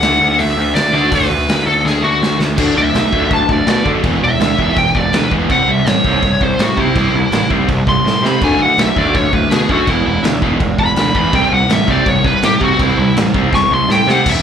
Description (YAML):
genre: punk rock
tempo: 164 BPM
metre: 4/4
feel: straight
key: unclear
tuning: A4 = 440 Hz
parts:
  - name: smooth overdriven lead guitar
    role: melody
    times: 0.0-14.4 s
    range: E4 to C#6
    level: -15 LUFS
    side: equal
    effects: none
  - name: fuzz picked electric bass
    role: bass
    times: 0.0-14.4 s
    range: E1 to D3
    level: -18 LUFS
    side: equal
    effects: overdrive
  - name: raw garage drum kit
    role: drums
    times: 0.0-14.3 s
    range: crash cymbal, hi-hat, kick drum, snare drum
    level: -18 LUFS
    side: equal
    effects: none
  - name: biting overdriven guitar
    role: riff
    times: 0.9-14.4 s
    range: E2 to D4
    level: -20 LUFS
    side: left 12 dB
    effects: slapback echo
  - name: raw garage guitar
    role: riff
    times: 0.9-14.2 s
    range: C3 to F#4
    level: -19 LUFS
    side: right 11 dB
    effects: overdrive, slapback echo
room: studio reverb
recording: live gig heard through the venue's PA, club reverb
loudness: -11 LUFS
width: side -8 dB against mid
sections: 0.0-2.6 A section; 2.6-14.3 B section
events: drum fill 1.9-2.6, 8.0-8.4, 13.5-14.3; lead electric guitar solo 2.6-14.3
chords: 0.0 D; 4.0 E; 5.5 C; 8.4 D; 9.9 E; 11.3 C5